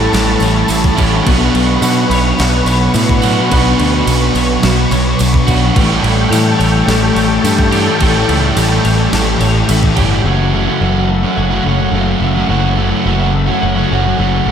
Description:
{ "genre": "rock, shoegaze and dream pop", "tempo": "107 BPM", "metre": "4/4", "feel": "straight", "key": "unclear", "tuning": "A4 = 440 Hz", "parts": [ { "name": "analog string pad", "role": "sustained chords", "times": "0.0-10.2 s", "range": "A4 to C#6", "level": "-19 LUFS", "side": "left 1 dB", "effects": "ensemble chorus" }, { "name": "twelve-string electric guitar", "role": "arpeggios", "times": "0.0-14.5 s", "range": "E3 to C#5", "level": "-22 LUFS", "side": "left 6 dB", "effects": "ensemble chorus, diffuse ambient delay" }, { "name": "overdriven semi-hollow guitar", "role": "riff", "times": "0.0-14.5 s", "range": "F#2 to G4", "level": "-16 LUFS", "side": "right 9 dB", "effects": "reverse reverb" }, { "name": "thick fuzz guitar", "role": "riff", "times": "0.0-14.5 s", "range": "F#2 to B3", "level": "-17 LUFS", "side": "left 8 dB", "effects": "distortion, analog chorus" }, { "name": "picked electric bass", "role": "bass", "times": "0.0-14.5 s", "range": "F#1 to B2", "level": "-16 LUFS", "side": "equal", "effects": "none" }, { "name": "clean 12-bit digital drum machine", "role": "drums", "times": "0.1-10.1 s", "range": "crash cymbal, kick drum, snare drum", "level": "-18 LUFS", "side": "right 1 dB", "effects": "none" }, { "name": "tambourine", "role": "percussion", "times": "0.1-10.1 s", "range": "none", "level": "-29 LUFS", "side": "right 10 dB", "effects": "none" } ], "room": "moderate plate reverb, RT60 1.9 s, digital ambience", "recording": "dreamy mix soaked in reverb", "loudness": "-10 LUFS", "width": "side -8 dB against mid", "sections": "0.0-10.3 A section; 10.3-14.5 B section", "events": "none", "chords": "0.0 A7; 1.3 Bmadd9; 5.8 A7; 10.3 F#m7" }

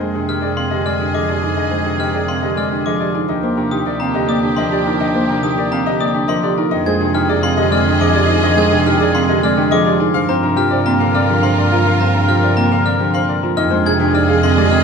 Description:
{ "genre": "classical, minimalist pattern music", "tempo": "105 BPM", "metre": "3/4", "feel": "straight", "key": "F dorian", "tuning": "A4 = 442 Hz", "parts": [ { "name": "bright baby grand piano", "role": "melody", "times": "0.0-14.8 s", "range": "G4 to G5", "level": "-22 LUFS", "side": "left 11 dB", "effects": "none" }, { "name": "clear oboe", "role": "second line", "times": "0.0-14.8 s", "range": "G4 to Bb4", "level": "-25 LUFS", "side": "right 3 dB", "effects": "none" }, { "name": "Celtic harp", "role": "accompaniment", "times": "0.0-14.8 s", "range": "C3 to C4", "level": "-20 LUFS", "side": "equal", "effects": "none" }, { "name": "rich studio string section", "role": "sustained chords", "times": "0.0-14.8 s", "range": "D4 to Eb5", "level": "-24 LUFS", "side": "left 1 dB", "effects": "none" }, { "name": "folk marimba with soft mallets", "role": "arpeggios", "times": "0.0-14.8 s", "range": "C4 to C5", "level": "-20 LUFS", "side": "right 6 dB", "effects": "none" }, { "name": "rich double bass", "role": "bass", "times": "0.0-14.8 s", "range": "Eb2 to G2", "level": "-21 LUFS", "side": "right 2 dB", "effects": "none" }, { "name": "glockenspiel with hard plastic mallets", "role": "arpeggios", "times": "0.3-14.8 s", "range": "Bb5 to Ab6", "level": "-22 LUFS", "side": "left 6 dB", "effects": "none" } ], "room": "wet recital hall reverb, RT60 1.4 s", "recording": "minimal, uncompressed stereo recording", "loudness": "-13 LUFS", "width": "side -6 dB against mid", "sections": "0.0-13.6 A section; 13.6-14.8 B section", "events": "none", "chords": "0.0 Fm9; 3.3 Ebmaj9; 6.7 Fm9; 10.1 Gm7; 13.6 Fm9" }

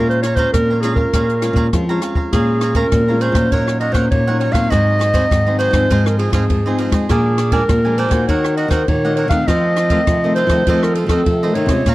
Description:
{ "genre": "samba and choro", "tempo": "101 BPM", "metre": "4/4", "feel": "straight", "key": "Bb minor", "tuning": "A4 = 435 Hz", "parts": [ { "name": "mellow clarinet", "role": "melody", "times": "0.0-11.9 s", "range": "Ab4 to F5", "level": "-18 LUFS", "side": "right 1 dB", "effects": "none" }, { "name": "cavaquinho", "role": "accompaniment", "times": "0.0-11.9 s", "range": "D4 to Bb5", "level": "-25 LUFS", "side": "right 4 dB", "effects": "none" }, { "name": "nylon-string guitar", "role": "accompaniment", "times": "0.0-11.9 s", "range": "F2 to Gb4", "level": "-22 LUFS", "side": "left 2 dB", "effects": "none" }, { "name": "nylon-string guitar", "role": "bass", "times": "0.0-11.9 s", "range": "Ab2 to Ab3", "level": "-18 LUFS", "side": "equal", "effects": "none" }, { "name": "compact cocktail drum kit", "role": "drums", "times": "0.1-11.9 s", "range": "hi-hat, kick drum, ride cymbal, rim click", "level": "-20 LUFS", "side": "equal", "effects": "none" } ], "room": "small room ambience", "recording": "dry, close 1970s-style studio recording", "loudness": "-13 LUFS", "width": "side -18 dB against mid", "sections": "0.0-2.3 A section; 2.3-11.9 B section", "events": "none", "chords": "0.0 Bbm7; 3.5 Ebm7/Bb; 4.7 Ab7; 5.9 Fm7/Ab; 7.1 Bb7; 8.3 Ebm; 9.5 F7" }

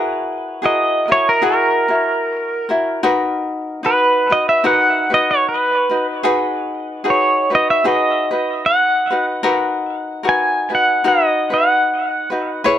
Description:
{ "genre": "hawaiian", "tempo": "75 BPM", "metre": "4/4", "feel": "swing 58% on 8ths", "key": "B major", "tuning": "A4 = 440 Hz", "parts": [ { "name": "ukulele", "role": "accompaniment", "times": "0.0-12.8 s", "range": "D#4 to C#5", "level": "-19 LUFS", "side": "left 2 dB", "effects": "none" }, { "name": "pedal steel guitar", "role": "melody", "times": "0.7-12.3 s", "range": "A#4 to G#5", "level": "-16 LUFS", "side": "right 1 dB", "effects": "digital delay" } ], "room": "light reverb", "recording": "dark, warm production", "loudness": "-14 LUFS", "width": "side -10 dB against mid", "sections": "0.0-12.8 A section", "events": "none", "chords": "0.0 F#9; 3.0 Bmaj7; 6.3 G#m7; 9.5 Bmaj7" }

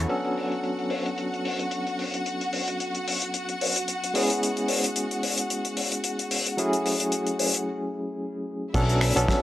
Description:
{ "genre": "nu-disco, nu disco", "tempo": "111 BPM", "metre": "4/4", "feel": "swing 56% on 16ths", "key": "B dorian", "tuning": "A4 = 438 Hz", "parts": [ { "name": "barky tine electric piano", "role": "accompaniment", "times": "0.0-9.4 s", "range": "F#3 to A4", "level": "-28 LUFS", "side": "equal", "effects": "fast tremolo, low-pass filter, tape echo" }, { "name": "rich symphonic string section", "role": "sustained chords", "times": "0.0-9.4 s", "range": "E4 to C#6", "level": "-32 LUFS", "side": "equal", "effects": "sidechain pumping" }, { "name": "fat analog bass", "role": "bass", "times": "0.0-0.1, 8.7-9.3 s", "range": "B1", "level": "-24 LUFS", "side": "equal", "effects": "none" }, { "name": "damped 70s drum kit", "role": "drums", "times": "0.1-9.4 s", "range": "crash cymbal, finger snaps, hi-hat, snare drum", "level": "-28 LUFS", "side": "left 2 dB", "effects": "low-pass filter on hats, low-pass filter on cymbals, low-pass filter on snare, low-pass filter on room" }, { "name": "kick drum", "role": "drums", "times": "8.7-9.4 s", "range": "none", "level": "-25 LUFS", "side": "equal", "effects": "none" } ], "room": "light reverb, studio ambience", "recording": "dry, gritty hardware recording", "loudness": "-24 LUFS", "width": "side -14 dB against mid", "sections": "0.1-8.7 A section", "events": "break 7.7-8.7", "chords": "0.1 Bm7; 4.1 C#m7; 6.6 F#m9; 8.7 Bm7" }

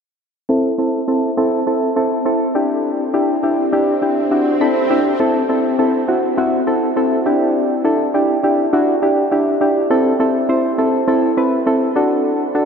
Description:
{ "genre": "pop", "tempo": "102 BPM", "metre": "4/4", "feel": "straight", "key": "A dorian", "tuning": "A4 = 440 Hz", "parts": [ { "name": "soft electric-piano-like synth keys", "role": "accompaniment", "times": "0.5-12.7 s", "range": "C4 to B5", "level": "-14 LUFS", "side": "equal", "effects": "chorus, low-pass filter" }, { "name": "swell", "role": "sound effects", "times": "3.8-5.2 s", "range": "none", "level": "-26 LUFS", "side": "right 1 dB", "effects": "none" } ], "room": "wet huge ambient reverb, RT60 8.5 s", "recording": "dreamy mix soaked in reverb", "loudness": "-14 LUFS", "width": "side -6 dB against mid", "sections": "0.5-5.2 A section; 5.2-12.7 B section", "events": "filter sweep on synth keys 0.5-5.2; swell 3.8-5.2; synth keys fill 4.3-5.2", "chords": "0.5 Am; 2.6 Em7; 5.2 Am; 7.3 Em7; 9.9 C6; 12.0 D" }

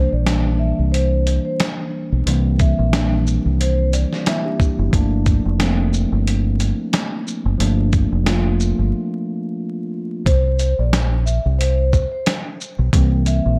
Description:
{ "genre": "hip hop, boom-bap hip-hop", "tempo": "90 BPM", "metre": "4/4", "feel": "swing 58% on 16ths", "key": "unclear", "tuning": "A4 = 440 Hz", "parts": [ { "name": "vibraphone with soft mallets", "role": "melody", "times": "0.0-4.6, 10.3-13.6 s", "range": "C5 to E5", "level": "-28 LUFS", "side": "equal", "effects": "high-pass filter, low-pass filter, analog delay" }, { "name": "mellow tine electric piano", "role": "accompaniment", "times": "0.0-13.6 s", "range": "C2 to G4", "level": "-24 LUFS", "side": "equal", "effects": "high-pass filter, low-pass filter" }, { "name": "deep dub fingered electric bass", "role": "bass", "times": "0.0-13.6 s", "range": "F1 to C2", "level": "-20 LUFS", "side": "equal", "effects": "none" }, { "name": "dusty soul sampler-style drum kit", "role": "drums", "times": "0.3-13.4 s", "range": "hi-hat, kick drum, shaker, snare drum", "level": "-23 LUFS", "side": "equal", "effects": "none" } ], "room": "light reverb", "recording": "vinyl crackle", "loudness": "-19 LUFS", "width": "mono", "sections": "0.0-10.3 A section; 10.3-13.6 B section", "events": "break 8.9-10.3", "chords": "0.0 C9; 4.9 Gm9; 10.3 C7" }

